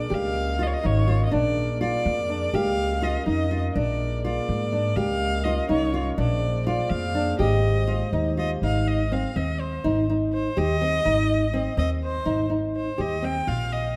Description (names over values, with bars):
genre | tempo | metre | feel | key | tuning
contemporary instrumental, chamber music in an uneven meter | 247 BPM (eighths) | 5/8 | straight | Ab major | A4 = 445 Hz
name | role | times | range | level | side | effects
rich violin | melody | 0.0-14.0 s | C5 to G5 | -31 LUFS | equal | none
glass harmonica | sustained chords | 0.0-8.6 s | Ab3 to F5 | -35 LUFS | equal | none
nylon-string guitar | arpeggios | 0.0-13.9 s | C4 to G4 | -29 LUFS | equal | none
upright bass | bass | 0.0-14.0 s | Ab1 to Ab2 | -28 LUFS | equal | none
room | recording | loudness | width
moderate concert hall reverb, RT60 2.2 s | none | -24 LUFS | mono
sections
0.0-8.6 A section; 8.6-14.0 B section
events
none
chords
0.1 Dbadd9; 1.3 Bb7; 2.5 Dbadd9; 3.8 Bb7; 5.0 Dbmaj9; 6.2 Bb9; 7.4 Abmaj7; 8.6 Ab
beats
| 0.11 0.35 0.60 0.84 1.08 | 1.33 1.57 1.81 2.05 2.29 | 2.54 2.78 3.02 3.27 3.51 | 3.76 4.00 4.24 4.49 4.73 | 4.97 5.22 5.46 5.70 5.95 | 6.19 6.43 6.67 6.91 7.15 | 7.39 7.64 7.88 8.12 8.37 | 8.62 8.87 9.11 9.36 9.60 | 9.84 10.08 10.33 10.57 10.81 | 11.05 11.29 11.53 11.77 12.01 | 12.25 12.50 12.74 12.98 13.23 | 13.47 13.72